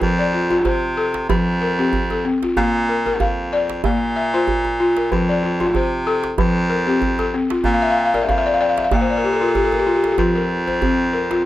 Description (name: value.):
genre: west african traditional, West African string and xylophone music.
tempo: 94 BPM.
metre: 4/4.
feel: swing 54% on 16ths.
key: F major.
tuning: A4 = 440 Hz.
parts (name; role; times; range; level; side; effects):
balafon; arpeggios; 0.0-11.5 s; F3 to G5; -18 LUFS; left 2 dB; none.
clear baritone saxophone; bass; 0.0-11.4 s; F2 to C3; -21 LUFS; right 1 dB; none.
djembe; percussion; 0.0-11.4 s; none; -25 LUFS; right 3 dB; none.
room: light reverb.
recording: close, detailed microphones.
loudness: -16 LUFS.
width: side -14 dB against mid.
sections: 0.0-10.2 A section; 10.2-11.5 B section.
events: balafon fill 7.7-10.2.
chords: 0.0 F; 2.6 Bb; 5.1 F; 7.6 Bb; 10.2 F5.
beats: | 0.01 0.65 1.29 1.93 | 2.56 3.20 3.83 4.47 | 5.11 5.74 6.38 7.01 | 7.65 8.28 8.91 9.55 | 10.18 10.81 11.45.